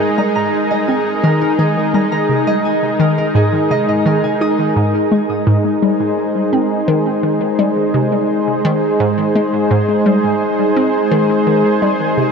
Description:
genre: ambient, sequencer-driven space music.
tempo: 85 BPM.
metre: 4/4.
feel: straight.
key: Ab major.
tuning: A4 = 442 Hz.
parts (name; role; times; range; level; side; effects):
lush unison pad; sustained chords; 0.0-12.3 s; Ab3 to C5; -15 LUFS; equal; chorus.
concert harp; arpeggios; 0.0-6.2 s; Ab4 to Eb6; -22 LUFS; right 4 dB; auto-pan, analog delay.
hollow square pluck; riff; 0.2-12.3 s; Ab2 to Eb4; -18 LUFS; left 1 dB; chorus, analog delay.
room: wet huge ambient reverb, RT60 9.1 s.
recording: dreamy mix soaked in reverb.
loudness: -13 LUFS.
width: side -5 dB against mid.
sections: 0.0-4.8 A section; 4.8-12.3 B section.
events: filter sweep on synth arpeggio sound 0.0-4.8.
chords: 0.0 Absus2.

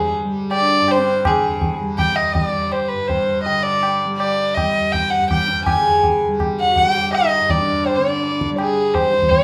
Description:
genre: indian classical, Hindustani.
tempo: 164 BPM.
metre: 3/4.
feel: straight.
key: unclear.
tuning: A4 = 439 Hz.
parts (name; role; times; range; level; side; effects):
warm violin; melody; 0.0-9.4 s; Ab4 to Ab5; -20 LUFS; equal; none.
dark sarangi; second line; 0.0-1.4, 5.8-8.6 s; Ab3 to Ab4; -27 LUFS; equal; none.
tanpura; drone; 0.0-9.4 s; G2 to G3; -28 LUFS; equal; none.
tabla; percussion; 0.5-9.4 s; none; -26 LUFS; equal; none.
room: wet large studio reverb, RT60 0.8 s.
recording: band playing live in one room.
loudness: -18 LUFS.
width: mono.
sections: 0.0-1.3 A section; 1.3-9.4 B section.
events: none.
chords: none.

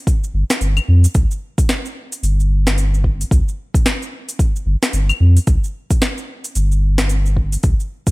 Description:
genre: organic downtempo.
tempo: 111 BPM.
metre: 4/4.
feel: swing 60% on 16ths.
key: unclear.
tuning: A4 = 440 Hz.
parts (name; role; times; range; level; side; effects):
afro-pop drum kit; drums; 0.1-8.1 s; claves, hi-hat, shaker, snare drum; -21 LUFS; equal; studio reverb.
electronic kick drum; drums; 0.1-8.1 s; none; -16 LUFS; equal; studio reverb.
warm sub bass; bass; 0.3-7.7 s; G1 to F2; -14 LUFS; equal; sidechain pumping.
room: digital ambience.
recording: none.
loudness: -14 LUFS.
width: side -23 dB against mid.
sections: 0.0-8.1 A section.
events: none.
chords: none.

